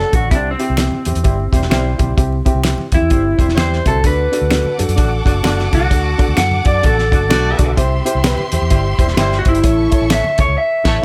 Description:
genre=uptempo 1960s-style soul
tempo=129 BPM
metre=4/4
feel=swing 61% on 8ths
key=D mixolydian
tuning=A4 = 440 Hz
part: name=electric guitar through a small old amp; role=melody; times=0.0-11.0 s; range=C4 to F#5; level=-20 LUFS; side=equal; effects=warbly pitch drift
part: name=warm horn section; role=second line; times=0.0-10.9 s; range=F#3 to D5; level=-28 LUFS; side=equal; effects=none
part: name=dark upright piano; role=accompaniment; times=0.0-11.0 s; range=A2 to C#5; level=-24 LUFS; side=equal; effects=none
part: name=vintage muted fingered electric bass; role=bass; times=0.0-11.0 s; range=E1 to F#2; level=-21 LUFS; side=equal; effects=none
part: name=warm soul drum kit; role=drums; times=0.1-11.0 s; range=crash cymbal, hi-hat, kick drum, snare drum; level=-18 LUFS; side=equal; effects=none
part: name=congas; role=percussion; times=0.1-10.5 s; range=none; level=-32 LUFS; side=equal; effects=none
part: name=finger snaps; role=percussion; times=0.8-10.2 s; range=none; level=-27 LUFS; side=equal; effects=none
part: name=warm studio violin section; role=second line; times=4.0-11.0 s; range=G4 to D6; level=-28 LUFS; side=equal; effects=none
room=little or no reverb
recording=none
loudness=-15 LUFS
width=mono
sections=0.0-11.0 A section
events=clean electric guitar solo 0.0-11.0; band accent 10.6-11.0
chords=0.3 C; 4.0 D; 7.8 C; 9.6 A

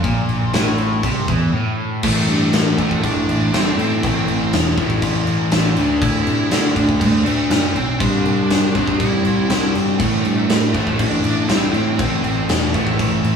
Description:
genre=hard rock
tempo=120 BPM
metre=4/4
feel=straight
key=A minor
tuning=A4 = 439 Hz
part: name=crunchy overdriven guitar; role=riff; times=0.0-13.4 s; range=A2 to D4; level=-19 LUFS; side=equal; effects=none
part: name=growling picked electric bass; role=bass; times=0.0-13.4 s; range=E1 to D3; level=-22 LUFS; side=equal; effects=overdrive
part: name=huge arena drum kit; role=drums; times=0.0-13.4 s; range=crash cymbal, kick drum, snare drum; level=-20 LUFS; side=left 1 dB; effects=none
part: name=high-gain lead guitar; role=melody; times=2.0-12.4 s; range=A3 to E4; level=-23 LUFS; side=right 3 dB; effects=distortion
room=light reverb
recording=band playing live in one room, small room reverb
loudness=-15 LUFS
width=side -6 dB against mid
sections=0.0-2.0 A section; 2.0-13.4 B section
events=break 1.5-2.0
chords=0.0 Am; 5.8 D5; 8.0 C; 10.0 Am

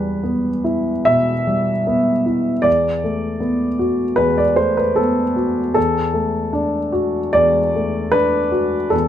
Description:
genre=neoclassical minimalist piano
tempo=76 BPM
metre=4/4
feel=rubato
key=unclear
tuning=A4 = 439 Hz
part: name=warm upright piano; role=solo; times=0.0-9.1 s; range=E2 to E5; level=-16 LUFS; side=equal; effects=none
room=light reverb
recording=none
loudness=-16 LUFS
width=side -10 dB against mid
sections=0.0-9.1 A section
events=none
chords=0.0 Em; 2.7 Bm7/E; 5.8 D/E

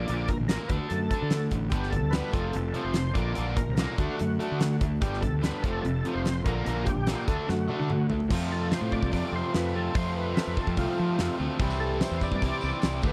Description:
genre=classic rock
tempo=146 BPM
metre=4/4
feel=straight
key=unclear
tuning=A4 = 441 Hz
part: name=overdriven tonewheel organ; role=melody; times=0.0-13.1 s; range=F4 to D5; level=-37 LUFS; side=equal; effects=slow rotary speaker, chorus vibrato
part: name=picked steel-string acoustic guitar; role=accompaniment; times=0.0-13.1 s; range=G2 to Bb4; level=-42 LUFS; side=equal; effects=none
part: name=overdriven electric guitar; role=riff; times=0.0-13.1 s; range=F2 to G4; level=-35 LUFS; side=equal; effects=none
part: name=fuzz fingered electric bass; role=bass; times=0.0-13.1 s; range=F1 to F3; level=-33 LUFS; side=equal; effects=overdrive
part: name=huge arena drum kit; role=drums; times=0.1-13.1 s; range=crash cymbal, hi-hat, kick drum, snare drum, toms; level=-32 LUFS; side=equal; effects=none
part: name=crunchy overdriven guitar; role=riff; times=1.7-13.1 s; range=F2 to G4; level=-36 LUFS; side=equal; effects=none
part: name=tambourine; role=percussion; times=11.6-13.1 s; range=none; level=-52 LUFS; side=equal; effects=none
room=small room ambience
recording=dry, close 1970s-style studio recording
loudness=-28 LUFS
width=mono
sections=0.0-8.3 A section; 8.3-13.1 B section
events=drum fill 7.5-8.3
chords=0.0 Bb; 0.7 D; 1.7 G; 2.4 F; 3.2 Bb; 4.0 D; 5.0 G; 5.6 F; 6.5 Bb; 7.3 D; 8.3 F; 11.6 Cadd9

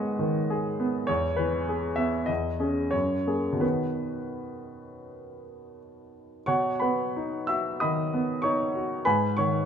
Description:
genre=classical, romantic character piece for solo piano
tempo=82-103 BPM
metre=4/4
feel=rubato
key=B major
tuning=A4 = 443 Hz
part: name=clear baby grand piano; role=solo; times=0.0-9.7 s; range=E2 to E6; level=-25 LUFS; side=equal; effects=none
room=moderate large studio reverb, RT60 1.2 s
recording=minimal, uncompressed stereo recording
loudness=-25 LUFS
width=side -8 dB against mid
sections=0.0-6.5 A section; 6.5-9.7 A section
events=none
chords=0.0 G#m; 1.1 E; 2.3 C#m/E; 2.9 F#add9; 3.6 B; 9.0 G#m

